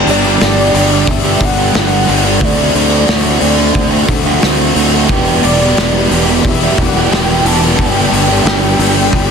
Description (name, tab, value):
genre	rock, shoegaze and dream pop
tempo	89 BPM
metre	4/4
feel	straight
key	G major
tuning	A4 = 440 Hz
part	biting overdriven guitar	riff	0.0-9.3 s	E2 to G4	-17 LUFS	left 13 dB	lush chorus
part	overdriven electric guitar	riff	0.0-9.1 s	E2 to G4	-16 LUFS	right 13 dB	reverse reverb
part	fuzz fingered electric bass	bass	0.0-9.3 s	E1 to D2	-15 LUFS	equal	overdrive
part	warm velvety synth lead	melody	0.1-9.3 s	D5 to A5	-18 LUFS	equal	chorus, tape echo
part	loose indie drum kit	drums	0.1-9.3 s	hi-hat, kick drum, snare drum	-14 LUFS	left 1 dB	none
part	string machine, full ensemble	sustained chords	5.1-9.3 s	G4 to B5	-24 LUFS	equal	ensemble chorus
room	small room reverb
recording	dense, heavily limited modern master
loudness	-9 LUFS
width	side -6 dB against mid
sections	0.0-9.3 A section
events	none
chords	0.0 Gmaj7; 2.4 D7; 5.1 Em7; 7.8 G6